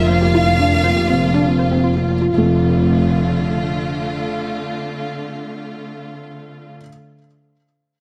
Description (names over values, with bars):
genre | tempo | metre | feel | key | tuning
piano and strings electronica | 120 BPM | 4/4 | straight | F major | A4 = 436 Hz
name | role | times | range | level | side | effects
rich studio violin section | melody | 0.0-1.8 s | F5 | -22 LUFS | equal | none
rich chamber string section | sustained chords | 0.0-6.8 s | D3 to F4 | -27 LUFS | equal | none
felt-muted upright piano | riff | 0.0-6.9 s | F3 to F4 | -23 LUFS | equal | delay
rich studio double bass section | bass | 0.0-3.8 s | F1 | -20 LUFS | equal | none
soft round pluck | arpeggios | 0.1-2.6 s | F4 to C5 | -30 LUFS | equal | none
room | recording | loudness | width
moderate scoring stage reverb, RT60 1.7 s, small room ambience | none | -17 LUFS | mono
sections
0.0-2.3 A section; 2.3-6.3 B section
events
drop 0.0-2.3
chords
0.0 Bb/F; 2.3 F6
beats
| 0.34 0.84 1.34 1.84 | 2.34 2.84 3.34 3.84 | 4.34 4.84 5.34 5.84